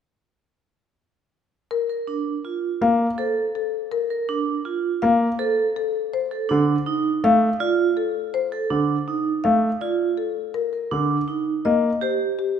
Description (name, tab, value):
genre	classical, minimalist pattern music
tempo	163 BPM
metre	6/4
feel	straight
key	Bb major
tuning	A4 = 440 Hz
part	marimba with soft mallets	melody	1.7-12.6 s	G4 to F5	-24 LUFS	left 7 dB	none
part	vibraphone with medium hard mallets	arpeggios	1.9-12.3 s	D4 to Bb4	-24 LUFS	right 7 dB	none
part	warm grand piano	accompaniment	2.8-11.9 s	D3 to Bb3	-23 LUFS	equal	none
room	moderate scoring stage reverb, RT60 2.0 s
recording	none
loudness	-20 LUFS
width	side -8 dB against mid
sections	1.7-12.6 A section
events	none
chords	1.7 Bbmaj7; 6.1 F7; 10.5 Ebmaj7